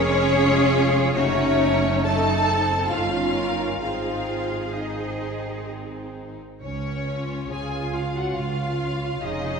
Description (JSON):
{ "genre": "classical, slow romantic movement for string orchestra", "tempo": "62-76 BPM", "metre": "3/4", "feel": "rubato", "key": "Db major", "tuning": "A4 = 442 Hz", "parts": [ { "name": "rich studio violin section", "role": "melody", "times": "0.0-9.6 s", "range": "Db5 to A5", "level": "-26 LUFS", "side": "left 3 dB", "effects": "none" }, { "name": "rich studio violin section", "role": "second line", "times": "0.0-9.6 s", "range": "Ab3 to F4", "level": "-29 LUFS", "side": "left 3 dB", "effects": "none" }, { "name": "rich studio viola section", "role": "accompaniment", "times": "0.0-9.6 s", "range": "Db4 to A4", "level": "-27 LUFS", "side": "right 2 dB", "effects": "none" }, { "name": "rich studio cello section", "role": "bass", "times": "0.0-9.6 s", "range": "Db4 to Bb4", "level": "-30 LUFS", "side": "right 4 dB", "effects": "none" }, { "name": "rich studio double bass section", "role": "bass", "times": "0.0-9.6 s", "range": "F1 to Db2", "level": "-28 LUFS", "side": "right 2 dB", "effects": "none" } ], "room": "wet scoring stage reverb, RT60 1.6 s", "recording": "heard from further back in the room, nothing above 10.6 kHz", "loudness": "-20 LUFS", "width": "side -5 dB against mid", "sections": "0.0-9.6 A section", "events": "none", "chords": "0.0 Db/F; 1.2 Ebm7b5/Gb; 2.9 Eb7/G; 3.8 Ab; 6.6 Db", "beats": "0.36 | 1.16 2.05 2.90 | 3.81 4.75 5.68 | 6.63 7.52 8.38 | 9.22" }